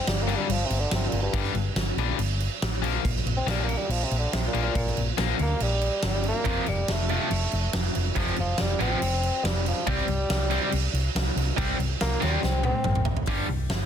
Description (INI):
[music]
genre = hard rock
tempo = 141 BPM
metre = 4/4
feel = straight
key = G minor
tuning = A4 = 440 Hz
[part]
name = warm bassoon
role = melody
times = 0.0-13.1 s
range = G2 to C4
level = -30 LUFS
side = equal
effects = slapback echo
[part]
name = hollow-body short-scale fingered electric bass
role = bass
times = 0.1-13.9 s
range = F1 to Eb2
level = -27 LUFS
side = equal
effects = none
[part]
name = huge arena drum kit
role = drums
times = 0.1-13.8 s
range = crash cymbal, hi-hat, kick drum, snare drum, toms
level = -28 LUFS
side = right 1 dB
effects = none
[part]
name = tight distorted guitar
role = riff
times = 0.3-13.5 s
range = F2 to C4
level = -32 LUFS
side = left 14 dB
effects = distortion
[part]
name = tight distorted guitar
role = riff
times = 6.4-13.5 s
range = F2 to C4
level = -32 LUFS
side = right 14 dB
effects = distortion
[sound]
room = small room ambience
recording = dense, heavily limited modern master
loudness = -23 LUFS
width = side -8 dB against mid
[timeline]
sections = 0.0-13.3 A section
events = bassoon solo 0.0-13.3; drum fill 12.4-13.3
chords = 0.0 G5; 2.8 Bb5; 6.5 F; 9.9 C5; 13.3 G5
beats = 0.06 0.49 0.92 | 1.34 1.77 2.19 2.62 | 3.04 3.47 3.90 4.32 | 4.75 5.18 5.60 6.03 | 6.46 6.88 7.31 7.74 | 8.16 8.59 9.02 9.44 | 9.87 10.29 10.72 11.15 | 11.57 12.00 12.43 12.85 | 13.28 13.70